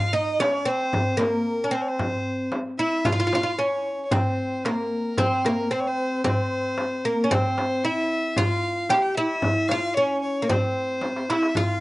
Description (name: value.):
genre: Arabic maqam ensemble.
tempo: 113 BPM.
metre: 4/4.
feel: straight.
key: C maqam bayati, C maqam hijaz from 3.1 s.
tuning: A4 = 436 Hz.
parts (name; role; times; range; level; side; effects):
oud; melody; 0.0-11.8 s; Bb3 to G4; -24 LUFS; right 1 dB; none.
warm violin; second line; 0.0-11.8 s; Bb4 to G5; -28 LUFS; left 2 dB; none.
darbuka; percussion; 0.4-11.7 s; none; -29 LUFS; equal; none.
frame drum; percussion; 0.4-11.7 s; none; -29 LUFS; left 1 dB; none.
room: little or no reverb.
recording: recorded outdoors, with no room sound, nothing above 10.6 kHz.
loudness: -21 LUFS.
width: side -19 dB against mid.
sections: 0.0-3.1 A section; 3.1-11.8 B section.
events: drum fill 11.0-11.6.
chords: none.